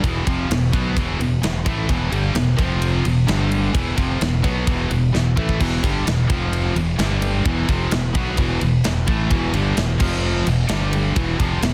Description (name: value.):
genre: heavy metal.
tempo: 129 BPM.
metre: 4/4.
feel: straight.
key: E minor.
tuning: A4 = 440 Hz.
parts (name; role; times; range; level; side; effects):
overdriven electric guitar; riff; 0.0-11.7 s; E2 to B3; -28 LUFS; equal; none.
scooped high-gain guitar; riff; 0.0-11.7 s; E2 to B3; -27 LUFS; equal; distortion.
scooped high-gain guitar; riff; 0.0-11.7 s; E2 to B3; -28 LUFS; equal; distortion.
growling fingered electric bass; bass; 0.0-11.7 s; E1 to B1; -25 LUFS; equal; overdrive.
tight metal drum kit; drums; 0.0-11.7 s; crash cymbal, kick drum, ride cymbal, snare drum; -26 LUFS; equal; none.
room: light reverb.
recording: dense, heavily limited modern master.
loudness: -20 LUFS.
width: mono.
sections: 0.0-11.7 A section.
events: drum fill 5.1-5.6.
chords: 0.0 Em; 2.6 F5; 3.0 E5; 3.3 G5; 3.7 Em; 6.3 F5; 6.8 E5; 7.0 G5; 7.5 Em; 10.0 F5; 10.5 E5; 10.7 G5; 11.2 E5.